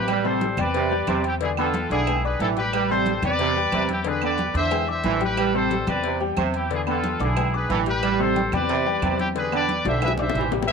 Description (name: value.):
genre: latin, salsa.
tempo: 181 BPM.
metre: 4/4.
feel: straight.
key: A minor.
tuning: A4 = 440 Hz.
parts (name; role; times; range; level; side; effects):
bright trumpet section; melody; 0.0-10.5 s; E4 to E5; -25 LUFS; left 1 dB; none.
clear upright piano; accompaniment; 0.0-10.7 s; C3 to D6; -28 LUFS; left 13 dB; none.
upright bass; bass; 0.0-10.7 s; A1 to E2; -28 LUFS; equal; none.
brilliant trombone section; second line; 0.1-10.7 s; C3 to G3; -27 LUFS; right 12 dB; none.
agogo bells and timbales; percussion; 0.1-10.7 s; none; -32 LUFS; right 14 dB; none.
claves; percussion; 0.1-10.7 s; none; -37 LUFS; right 14 dB; none.
congas; percussion; 0.1-10.7 s; none; -33 LUFS; left 1 dB; none.
cowbell and bongos; percussion; 0.1-10.7 s; none; -34 LUFS; left 12 dB; none.
bright trumpet section; melody; 10.7 s; C5 to E5; -21 LUFS; left 4 dB; none.
room: light reverb, studio reverb.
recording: 1960s-style stereo with parts hard left and right.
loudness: -20 LUFS.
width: side -5 dB against mid.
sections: 0.1-10.7 A section.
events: drum fill 9.9-10.7.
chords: 0.1 Am11; 1.4 E7; 2.7 Am11; 4.1 E7; 5.4 Am11; 6.7 E7; 8.0 Am11; 9.4 E7.